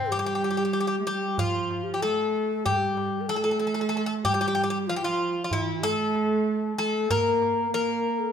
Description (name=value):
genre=Turkish makam ensemble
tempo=189 BPM (eighths)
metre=9/8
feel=straight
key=G makam huseyni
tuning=A4 = 440 Hz
part: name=Greek bouzouki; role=melody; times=0.0-8.3 s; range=C4 to Bb4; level=-26 LUFS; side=left 2 dB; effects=none
part: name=breathy mellow low ney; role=second line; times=0.0-8.3 s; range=E4-29c to C5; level=-30 LUFS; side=left 4 dB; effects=none
part: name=dark cello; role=second line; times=0.0-8.3 s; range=C3 to Bb3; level=-30 LUFS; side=right 6 dB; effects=none
part: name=darbuka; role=percussion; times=0.1-7.6 s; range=none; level=-34 LUFS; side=right 4 dB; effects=none
room=moderate recital hall reverb, RT60 1.3 s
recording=minimal, uncompressed stereo recording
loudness=-23 LUFS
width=side -8 dB against mid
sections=0.0-8.3 A section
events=none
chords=none